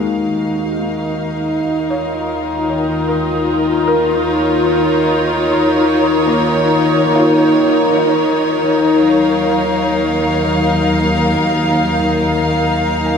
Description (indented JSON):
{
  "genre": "ambient",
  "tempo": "free time",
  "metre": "none",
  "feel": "none",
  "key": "Eb minor",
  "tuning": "A4 = 444 Hz",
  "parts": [
    { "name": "dark studio string section", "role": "sustained chords", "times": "0.0-13.2 s", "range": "Eb3 to F5", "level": "-14 LUFS", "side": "left 1 dB", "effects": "none" },
    { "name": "felt-muted upright piano", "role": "arpeggios", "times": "0.0-13.2 s", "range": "Ab3 to Ab5", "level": "-23 LUFS", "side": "equal", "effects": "diffuse ambient delay" },
    { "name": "dark studio cello section", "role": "bass", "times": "0.0-13.2 s", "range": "Eb2", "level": "-25 LUFS", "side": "equal", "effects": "none" },
    { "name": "overtone-sweeping drone", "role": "drone", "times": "0.0-13.2 s", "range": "Eb3 to Eb4", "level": "-23 LUFS", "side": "equal", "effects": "chorus, built-in reverb" }
  ],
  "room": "wet huge ambient reverb, RT60 8.0 s",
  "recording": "dreamy mix soaked in reverb",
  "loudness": "-12 LUFS",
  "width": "side -6 dB against mid",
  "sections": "0.0-8.1 A section; 8.1-13.2 B section",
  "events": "fade-in on string section 0.0-8.1; fade-in on felt piano 0.0-8.1; fade-out on cello section 0.0-8.1",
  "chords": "0.0 Ebmadd9; 1.7 Bbm/Eb; 8.1 Ebmadd9",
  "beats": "free time"
}